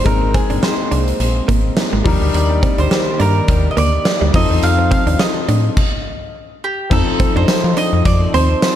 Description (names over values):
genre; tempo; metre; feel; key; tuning
1980s-style pop; 105 BPM; 4/4; swing 55% on 16ths; unclear; A4 = 440 Hz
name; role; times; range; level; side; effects
mandolin; melody; 0.0-8.8 s; G4 to F5; -21 LUFS; right 2 dB; ping-pong delay
clear concert grand piano; accompaniment; 0.0-8.8 s; F3 to Bb4; -22 LUFS; left 6 dB; none
chorused pulse-width pad; sustained chords; 0.0-8.8 s; Eb3 to D5; -25 LUFS; left 1 dB; none
slap-like FM bass; bass; 0.0-8.6 s; G1 to F3; -16 LUFS; equal; none
big rock drum kit; drums; 0.1-8.8 s; crash cymbal, hi-hat, kick drum, snare drum, tambourine; -18 LUFS; equal; none
direct-recorded clean electric guitar; riff; 0.2-8.7 s; F3 to D4; -25 LUFS; right 6 dB; analog chorus
room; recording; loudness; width
light reverb; dark, warm production; -13 LUFS; side -11 dB against mid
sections
0.0-6.9 A section; 6.9-8.8 B section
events
stop 5.8-6.9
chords
0.1 Abadd9; 2.1 Ebmaj7; 4.3 F7